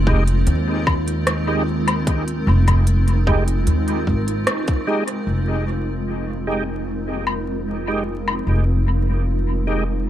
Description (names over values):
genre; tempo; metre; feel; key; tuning
ambient dub; 75 BPM; 4/4; straight; F minor; A4 = 440 Hz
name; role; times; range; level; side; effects
granular cloud pad; sustained chords; 0.0-10.1 s; Ab3 to Bb4; -25 LUFS; equal; built-in reverb
upright bass; bass; 0.0-10.1 s; F1 to Eb2; -20 LUFS; equal; tube saturation
overdriven tonewheel organ; stabs; 0.1-9.8 s; Ab3 to G4; -26 LUFS; right 2 dB; chorus vibrato, slow rotary speaker, dub echo
electronic kick drum; drums; 0.1-4.8 s; none; -21 LUFS; equal; none
organic electronic drum kit; drums; 0.3-8.4 s; hi-hat, rim click, woodblock; -25 LUFS; left 2 dB; dub echo
room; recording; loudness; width
little or no reverb; echo-heavy mix, vinyl crackle; -18 LUFS; side -12 dB against mid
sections
0.0-5.3 A section; 5.3-10.1 B section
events
band accent 4.5-4.9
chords
0.0 Fm9